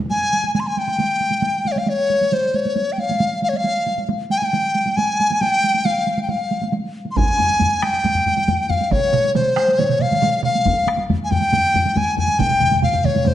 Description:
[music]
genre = japanese traditional, taiko drum ensemble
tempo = 137 BPM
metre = 4/4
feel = straight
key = unclear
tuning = A4 = 442 Hz
[part]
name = mellow hollow dizi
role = melody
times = 0.1-13.3 s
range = C5 to C6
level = -18 LUFS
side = left 1 dB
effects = none
[part]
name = taiko ensemble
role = percussion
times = 0.1-13.3 s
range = none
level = -24 LUFS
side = right 2 dB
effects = none
[part]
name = taiko ensemble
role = percussion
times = 7.2-13.3 s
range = none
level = -24 LUFS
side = left 3 dB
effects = none
[part]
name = taiko ensemble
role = percussion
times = 7.2-12.5 s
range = none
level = -23 LUFS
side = right 1 dB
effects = none
[part]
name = taiko ensemble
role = percussion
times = 8.9-13.3 s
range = none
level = -23 LUFS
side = right 6 dB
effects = none
[sound]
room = wet recital hall reverb, RT60 1.6 s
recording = nothing above 11.0 kHz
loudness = -16 LUFS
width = side -12 dB against mid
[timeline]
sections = 0.1-13.3 A section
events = none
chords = none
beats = | 0.10 0.55 0.99 1.44 | 1.88 2.32 2.76 3.21 | 3.65 4.09 4.53 4.97 | 5.41 5.85 6.29 6.73 | 7.17 7.60 8.04 8.48 | 8.91 9.35 9.79 10.22 | 10.66 11.09 11.53 11.96 | 12.39 12.82 13.26

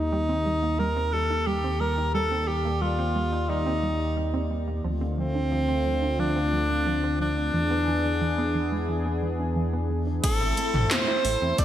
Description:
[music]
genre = synthwave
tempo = 89 BPM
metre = 4/4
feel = straight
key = unclear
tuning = A4 = 444 Hz
[part]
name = bright alto saxophone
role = melody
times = 0.0-11.6 s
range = C4 to D5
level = -27 LUFS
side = equal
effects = digital delay
[part]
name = warm analog pad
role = sustained chords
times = 0.0-11.6 s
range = D3 to D5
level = -31 LUFS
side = equal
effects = chorus, sidechain pumping
[part]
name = wide unison pluck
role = arpeggios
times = 0.0-11.6 s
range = E3 to A4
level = -33 LUFS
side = right 3 dB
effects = digital delay
[part]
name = dark detuned saw bass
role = bass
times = 0.0-11.5 s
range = A1 to E2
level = -29 LUFS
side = equal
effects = sidechain pumping
[part]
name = airy dreamy lead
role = second line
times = 10.2-11.6 s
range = A4 to D5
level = -33 LUFS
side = right 3 dB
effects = chorus
[part]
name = 80s electronic pad drums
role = drums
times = 10.2-11.6 s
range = crash cymbal, handclaps, hi-hat, snare drum, toms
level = -27 LUFS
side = equal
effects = gated reverb on snare and toms, gated reverb
[part]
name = electronic kick drum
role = drums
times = 10.2-11.6 s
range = none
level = -25 LUFS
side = equal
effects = none
[sound]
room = moderate lush hall reverb, RT60 1.9 s, digital ambience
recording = bright 1980s-style digital production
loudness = -23 LUFS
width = side -11 dB against mid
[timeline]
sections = 0.0-10.2 A section; 10.2-11.6 B section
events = filter sweep on analog synth pad 0.0-10.2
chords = 0.0 Eb6; 4.8 Dm7; 7.5 E7; 10.2 Am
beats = 0.12 0.80 1.47 | 2.15 2.82 3.50 4.17 | 4.84 5.52 6.19 6.87 | 7.54 8.21 8.89 9.56 | 10.24 10.91 11.59

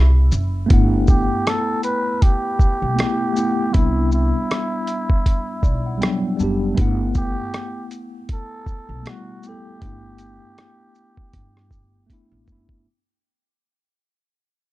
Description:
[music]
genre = lo-fi hip hop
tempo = 79 BPM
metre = 4/4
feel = swing 56% on 16ths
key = G major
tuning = A4 = 440 Hz
[part]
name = trumpet with cup mute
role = melody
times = 0.0-12.1 s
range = E4 to B4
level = -26 LUFS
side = right 1 dB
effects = tape echo, plate reverb
[part]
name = upright bass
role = bass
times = 0.0-12.8 s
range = F#1 to G2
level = -19 LUFS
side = equal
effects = none
[part]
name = lo-fi sampler-style drum kit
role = drums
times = 0.3-12.8 s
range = hi-hat, kick drum, rim click, shaker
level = -18 LUFS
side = equal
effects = none
[part]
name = tine electric piano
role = accompaniment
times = 0.7-12.9 s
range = F#3 to A5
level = -24 LUFS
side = left 1 dB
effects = medium stereo tremolo, cassette tape, plate reverb
[sound]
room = little or no reverb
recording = dark, warm production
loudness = -17 LUFS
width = side -17 dB against mid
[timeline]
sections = 0.0-12.9 A section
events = break 0.0-0.7; fade-out 0.0-12.9; tine electric piano fill 5.3-6.8; drum fill 12.1-12.9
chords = 0.0 C; 0.7 Gmaj13; 3.7 Cmaj9; 6.8 Gmaj13; 9.8 G69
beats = | 0.70 1.46 2.22 2.98 | 3.74 4.50 5.26 6.02 | 6.78 7.54 8.30 9.05 | 9.81 10.57 11.33 12.09

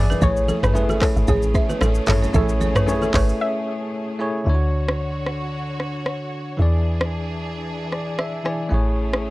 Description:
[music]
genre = afrobeats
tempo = 113 BPM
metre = 4/4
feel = swing 55% on 16ths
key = unclear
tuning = A4 = 439 Hz
[part]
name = bell-like tine electric piano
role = accompaniment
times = 0.0-9.3 s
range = D3 to G#5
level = -26 LUFS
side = left 1 dB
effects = fast stereo tremolo
[part]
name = bright studio string section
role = sustained chords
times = 0.0-9.3 s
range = D3 to C#5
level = -32 LUFS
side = equal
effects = none
[part]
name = deep log drum bass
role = bass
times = 0.0-9.3 s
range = G#1 to E2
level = -21 LUFS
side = equal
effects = none
[part]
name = balafon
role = riff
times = 0.1-3.3 s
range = A4 to E5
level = -28 LUFS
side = right 4 dB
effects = analog delay
[part]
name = afro-pop drum kit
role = drums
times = 0.1-9.2 s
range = handclaps, hi-hat, kick drum, rim click, shaker, toms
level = -21 LUFS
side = equal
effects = none
[part]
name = bongos and congas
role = percussion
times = 0.1-3.1 s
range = none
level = -28 LUFS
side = equal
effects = none
[part]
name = soft round pluck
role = melody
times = 0.2-3.8 s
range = G#4 to E5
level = -26 LUFS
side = equal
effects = chorus, analog delay
[sound]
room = little or no reverb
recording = dry, gritty hardware recording, cassette tape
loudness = -19 LUFS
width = side -19 dB against mid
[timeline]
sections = 0.0-4.5 A section; 4.5-9.3 B section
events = break 3.4-4.5; tine electric piano fill 7.7-8.7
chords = 0.2 Amaj7; 4.5 Dmaj7; 6.6 E7; 8.7 Amaj7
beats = | 0.22 0.75 1.28 1.81 | 2.34 2.88 3.41 3.94 | 4.47 5.00 5.53 6.06 | 6.59 7.12 7.65 8.19 | 8.72 9.25

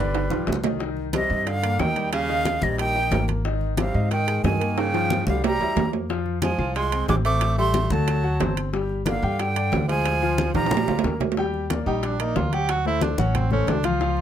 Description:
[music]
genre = Afro-Cuban jazz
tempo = 182 BPM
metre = 4/4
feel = straight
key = C minor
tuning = A4 = 440 Hz
[part]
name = breathy bright jazz flute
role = melody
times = 0.0-11.2 s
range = Cb5 to D6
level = -26 LUFS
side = right 2 dB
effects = none
[part]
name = clear tenor saxophone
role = second line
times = 0.0-14.2 s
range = C3 to G4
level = -29 LUFS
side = right 5 dB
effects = none
[part]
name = clear concert grand piano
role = accompaniment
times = 0.0-14.2 s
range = D3 to G5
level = -28 LUFS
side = left 5 dB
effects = none
[part]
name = upright bass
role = bass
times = 0.0-14.2 s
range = G1 to Ab2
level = -26 LUFS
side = equal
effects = none
[part]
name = bongos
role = percussion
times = 0.1-14.2 s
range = none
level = -32 LUFS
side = left 6 dB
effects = none
[part]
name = congas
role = percussion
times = 0.1-14.2 s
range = none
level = -30 LUFS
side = left 1 dB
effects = none
[part]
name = timbales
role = percussion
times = 0.1-14.0 s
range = none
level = -28 LUFS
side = right 10 dB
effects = none
[sound]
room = little or no reverb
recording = close, detailed microphones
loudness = -20 LUFS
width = side -10 dB against mid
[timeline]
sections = 0.8-11.4 A section; 11.4-14.2 B section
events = drum fill 0.0-0.8, 4.8-6.1, 10.5-11.4; tenor saxophone solo 11.4-14.2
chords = 0.1 G7; 0.8 Cm11; 2.1 Abmaj7(no3); 4.8 Gm7b5; 5.4 C7; 6.1 Fm; 7.4 Am7; 8.1 D7; 8.7 Gm7; 10.1 Ddim; 10.7 Bb6; 11.4 Ebmaj7; 12.7 D7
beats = 0.14 0.47 | 0.80 1.13 1.46 1.79 | 2.13 2.46 2.79 3.12 | 3.45 3.78 4.11 4.44 | 4.77 5.10 5.43 5.76 | 6.09 6.42 6.75 7.08 | 7.42 7.75 8.07 8.40 | 8.73 9.06 9.39 9.72 | 10.05 10.38 10.71 11.04 | 11.37 11.70 12.03 12.36 | 12.69 13.02 13.35 13.68 | 14.01

